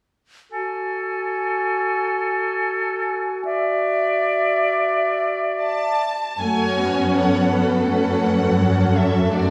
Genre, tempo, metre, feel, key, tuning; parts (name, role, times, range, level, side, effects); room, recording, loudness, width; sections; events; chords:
cinematic, emotional film score for orchestra; 82 BPM; 4/4; rubato; F# minor; A4 = 445 Hz
clear oboe; second line; 0.5-6.0 s; A4 to D5; -26 LUFS; equal
concert flute; second line; 0.5-6.0 s; E5 to G#5; -26 LUFS; equal
warm clarinet; second line; 0.5-6.0 s; F#4; -30 LUFS; equal
dark studio violin section; melody; 5.6-9.5 s; D5 to A5; -28 LUFS; equal
warm studio violin section; second line; 6.4-9.5 s; F#4 to C#5; -26 LUFS; equal
rich studio viola section; accompaniment; 6.4-9.5 s; F#3 to D4; -24 LUFS; equal
rich studio cello section; bass; 6.4-9.5 s; F#2; -22 LUFS; equal
wet scoring stage reverb, RT60 1.7 s; heard from further back in the room; -21 LUFS; mono
0.5-6.4 A section; 6.4-9.5 B section
0.5 F#madd9; 3.5 Dadd9/F#; 6.4 F#madd9